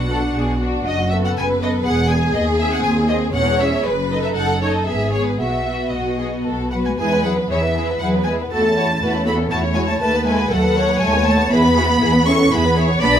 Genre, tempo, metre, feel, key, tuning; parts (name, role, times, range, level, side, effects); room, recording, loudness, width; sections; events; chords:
quick classical-period movement for string orchestra; 119 BPM; 3/4; straight; E major; A4 = 440 Hz
clear symphonic violin section; melody; 0.0-13.2 s; B4 to C#6; -22 LUFS; equal
warm symphonic violin section; second line; 0.0-13.2 s; A3 to C#5; -23 LUFS; left 1 dB
warm symphonic viola section; accompaniment; 0.0-13.2 s; B3 to D5; -22 LUFS; equal
dark symphonic double bass section; bass; 0.0-13.2 s; E1 to E2; -23 LUFS; right 1 dB
warm symphonic cello section; bass; 0.0-13.1 s; D#2 to C#4; -22 LUFS; equal
little or no reverb; close, detailed microphones; -16 LUFS; side -9 dB against mid
0.0-7.0 A section; 7.0-13.2 B section
0.0 Bm; 0.9 B5/F#; 1.9 E; 2.4 G#/D#; 3.4 C#m/E; 3.9 B7/F#; 4.9 E/G#; 5.4 B; 7.0 E; 8.5 F#m7/E; 10.0 B7/D#; 11.5 E